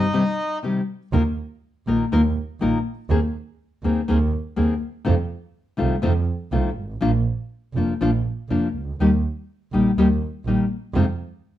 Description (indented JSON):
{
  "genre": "tango",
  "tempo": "122 BPM",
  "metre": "4/4",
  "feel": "rubato",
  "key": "Eb major",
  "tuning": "A4 = 436 Hz",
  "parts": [
    { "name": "bandoneon", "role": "melody", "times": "0.0-0.6 s", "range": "Eb4 to Eb5", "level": "-25 LUFS", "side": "left 1 dB", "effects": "none" },
    { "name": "nylon-string guitar", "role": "accompaniment", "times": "0.0-11.0 s", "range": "C3 to Bb4", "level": "-21 LUFS", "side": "left 3 dB", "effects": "none" },
    { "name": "warm double bass", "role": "bass", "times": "0.0-11.2 s", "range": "F1 to F2", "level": "-22 LUFS", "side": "right 3 dB", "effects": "none" }
  ],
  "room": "moderate studio reverb, RT60 0.8 s",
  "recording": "dark, warm production",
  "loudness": "-20 LUFS",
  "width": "side -12 dB against mid",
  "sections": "0.0-1.1 A section; 1.1-11.6 B section",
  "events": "break 0.1-1.1",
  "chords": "0.0 Cm; 1.1 Ebsus2; 3.1 Abadd9/Eb; 5.0 F7; 7.0 Bb; 9.0 Eb; 11.0 Fm7"
}